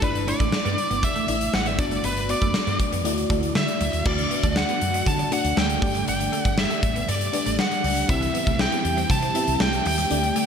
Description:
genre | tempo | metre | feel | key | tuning
1980s-style pop | 119 BPM | 4/4 | straight | unclear | A4 = 440 Hz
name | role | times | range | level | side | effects
bluesy overdriven lead guitar | melody | 0.0-10.5 s | B4 to A5 | -26 LUFS | right 1 dB | distortion, ping-pong delay
FM electric piano with soft pad layer | accompaniment | 0.0-10.5 s | A3 to E5 | -28 LUFS | left 2 dB | chorus
twelve-string electric guitar | riff | 0.0-10.4 s | F#3 to D4 | -33 LUFS | right 5 dB | wide subtle chorus, ping-pong delay
woody fretless electric bass | bass | 0.0-10.3 s | F#1 to D3 | -28 LUFS | equal | ensemble chorus
big rock drum kit | drums | 0.0-10.5 s | crash cymbal, hi-hat, kick drum, snare drum | -25 LUFS | equal | gated reverb
string machine, violins | sustained chords | 4.1-10.5 s | D3 to G4 | -32 LUFS | equal | ensemble chorus
room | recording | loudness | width
moderate lush hall reverb, RT60 2.0 s | bright 1980s-style digital production | -20 LUFS | side -7 dB against mid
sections
0.0-4.1 A section; 4.1-10.5 B section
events
none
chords
0.0 Dsus2/G; 1.8 Bm/G; 3.0 Dadd9; 4.1 D; 5.8 Gsus2; 8.1 C

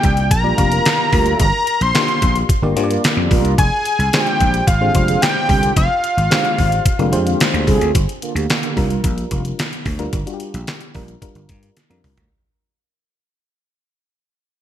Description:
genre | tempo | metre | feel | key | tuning
early-eighties boogie funk | 110 BPM | 4/4 | straight | unclear | A4 = 444 Hz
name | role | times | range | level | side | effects
fat analog lead | melody | 0.0-7.4 s | F5 to C6 | -18 LUFS | left 1 dB | chorus
FM electric piano with auto-pan | accompaniment | 0.0-12.3 s | G3 to F5 | -23 LUFS | left 2 dB | none
vintage slap bass | bass | 0.0-12.3 s | F1 to G2 | -19 LUFS | equal | none
detuned 8-bit digital drum machine | drums | 0.0-12.3 s | handclaps, hi-hat, kick drum, snare drum, toms | -18 LUFS | equal | gated reverb
mellow synth brass | second line | 0.4-9.4 s | D3 to Bb4 | -24 LUFS | right 2 dB | chorus
room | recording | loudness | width
light reverb | bright 1980s-style digital production | -14 LUFS | side -10 dB against mid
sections
0.0-7.9 A section; 7.9-12.3 B section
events
fade-out 7.9-12.3; drum fill 11.8-12.3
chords
0.0 Gm7; 3.6 Fm69; 7.9 Gm7

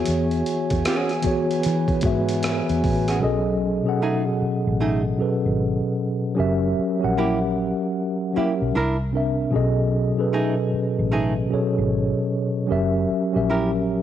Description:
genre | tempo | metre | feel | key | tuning
R&B, neo-soul | 76 BPM | 4/4 | swing 64% on 16ths | unclear | A4 = 439 Hz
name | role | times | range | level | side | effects
mellow tine electric piano | accompaniment | 0.0-14.0 s | B2 to F#5 | -21 LUFS | equal | medium stereo tremolo, cassette tape
glass harmonica | sustained chords | 0.0-3.2 s | F#4 to G#5 | -31 LUFS | right 2 dB | cassette tape
vintage muted fingered electric bass | bass | 0.1-14.0 s | F#1 to E3 | -25 LUFS | equal | none
boom bap sampler-style drum kit | drums | 0.1-3.2 s | hi-hat, kick drum, rim click | -27 LUFS | equal | cassette tape
archtop guitar, miked and amplified | second line | 0.9-13.7 s | A3 to Bb4 | -26 LUFS | right 3 dB | cassette tape
room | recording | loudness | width
light reverb | home recording on cassette | -20 LUFS | side -10 dB against mid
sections
0.0-3.2 A section; 3.2-14.0 B section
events
none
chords
0.0 E69; 3.2 B13; 6.4 F#7b9; 8.7 C9; 9.5 B13; 12.7 F#7b9

